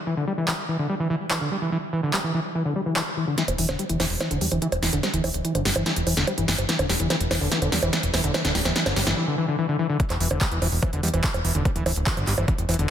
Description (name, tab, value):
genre	psychedelic trance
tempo	145 BPM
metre	4/4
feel	straight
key	unclear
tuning	A4 = 440 Hz
part	overdriven acid bass	riff	0.1-12.9 s	D3 to G3	-25 LUFS	equal	auto-pan, cassette tape, sidechain pumping, tape echo
part	big-room dance drum kit	drums	0.5-12.9 s	bongos, handclaps, hi-hat, snare drum	-26 LUFS	right 1 dB	none
part	plucky analog bass	bass	3.5-12.9 s	D1 to E2	-26 LUFS	equal	none
part	electronic kick drum	drums	10.0-12.6 s	none	-24 LUFS	equal	none
room	wet lush hall reverb, RT60 1.6 s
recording	dense, heavily limited modern master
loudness	-21 LUFS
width	side -9 dB against mid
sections	0.0-3.4 A section; 3.4-10.0 B section; 10.0-12.9 C section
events	filter sweep on acid bass 0.0-3.4, 3.4-10.0; build-up 3.4-10.0; drum fill 3.4-9.2; drop 10.0-12.9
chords	0.0 Dsus2; 3.4 Dsus24